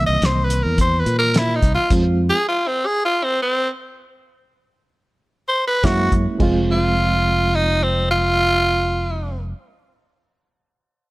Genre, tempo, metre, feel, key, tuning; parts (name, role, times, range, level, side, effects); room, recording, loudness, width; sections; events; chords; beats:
straight-eighth soul blues; 107 BPM; 4/4; swing 53% on 16ths; F minor; A4 = 440 Hz
growling tenor saxophone; melody; 0.0-9.4 s; C4 to D#5; -18 LUFS; equal
barky reed electric piano; accompaniment; 0.0-2.4, 5.8-9.5 s; D#3 to F4; -24 LUFS; right 2 dB; overdrive, fast tremolo
fingered electric bass; bass; 0.0-2.3, 5.8-9.5 s; F1 to Bb2; -21 LUFS; equal
cloth-damped thuddy drum kit; drums; 0.2-2.0, 5.8-6.5 s; crash cymbal, hi-hat, kick drum, snare drum; -20 LUFS; equal
small room ambience; -16 LUFS; side -20 dB against mid
0.0-6.4 A section; 6.4-8.6 B section
stop 1.9-5.8
0.0 C7#9; 1.9 Fm; 5.8 Gb7; 6.4 Fm
0.22 0.78 1.34 | 1.91 2.47 3.03 3.59 | 4.15 4.71 5.27 5.84 | 6.40 6.96 7.52 8.08